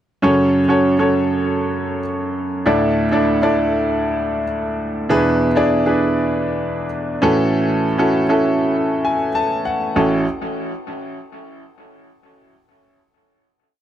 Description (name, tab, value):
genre	pop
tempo	99 BPM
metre	4/4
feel	straight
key	A major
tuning	A4 = 441 Hz
part	clear baby grand piano	solo	0.2-10.2 s	A1 to A5	-16 LUFS	equal	tape echo
room	light reverb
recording	dry, close 1970s-style studio recording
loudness	-16 LUFS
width	side -11 dB against mid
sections	0.2-10.0 chorus; 10.0-12.4 final chord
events	grand piano fill 8.7-10.0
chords	0.2 F#m; 2.7 Dsus2; 5.1 E7; 7.2 A6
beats	| 0.23 0.84 1.45 2.06 | 2.67 3.27 3.88 4.49 | 5.10 5.71 6.32 6.92 | 7.53 8.14 8.74 9.35 | 9.96